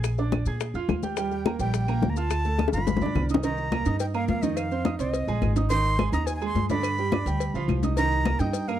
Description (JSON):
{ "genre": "latin, salsa", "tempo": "212 BPM", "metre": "4/4", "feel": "straight", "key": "C minor", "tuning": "A4 = 440 Hz", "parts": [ { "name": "bright baby grand piano", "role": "accompaniment", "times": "0.0-8.8 s", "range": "D3 to Ab6", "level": "-29 LUFS", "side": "right 7 dB", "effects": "none" }, { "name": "upright bass", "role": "bass", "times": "0.0-8.8 s", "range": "G1 to Bb2", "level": "-27 LUFS", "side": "equal", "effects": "none" }, { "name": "bongos and cowbell", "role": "percussion", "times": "0.0-8.7 s", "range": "none", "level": "-30 LUFS", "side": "left 8 dB", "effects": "none" }, { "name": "claves", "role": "percussion", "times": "0.0-8.8 s", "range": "none", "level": "-42 LUFS", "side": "right 16 dB", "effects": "none" }, { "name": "congas", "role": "percussion", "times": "0.0-8.8 s", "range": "none", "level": "-30 LUFS", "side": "left 5 dB", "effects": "none" }, { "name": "maracas", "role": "percussion", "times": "0.0-8.8 s", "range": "none", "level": "-44 LUFS", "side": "left 18 dB", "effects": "none" }, { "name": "breathy bright jazz flute", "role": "melody", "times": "1.3-8.8 s", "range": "Eb5 to C6", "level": "-30 LUFS", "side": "right 1 dB", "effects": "none" } ], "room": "small room ambience", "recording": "dry, close 1970s-style studio recording", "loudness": "-23 LUFS", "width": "side -11 dB against mid", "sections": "0.0-3.4 A section; 3.4-8.8 B section", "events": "drum fill 2.6-3.4", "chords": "0.0 Bb7; 1.2 Ebmaj7; 2.3 Dm; 2.9 G7; 3.4 Cm7; 4.6 Fm7; 5.7 Abmaj7; 6.8 G7; 8.0 Cm7" }